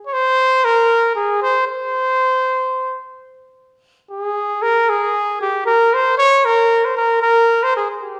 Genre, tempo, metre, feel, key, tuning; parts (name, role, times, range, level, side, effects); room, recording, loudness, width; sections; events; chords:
mexican folk; 76 BPM (dotted quarters); 6/8; straight; A4 = 437 Hz
warm trumpet; solo; 0.1-8.2 s; G4 to Db5; -16 LUFS; equal
wet recital hall reverb, RT60 1.5 s; recorded in a church or concert hall; -16 LUFS; mono
0.0-8.2 A section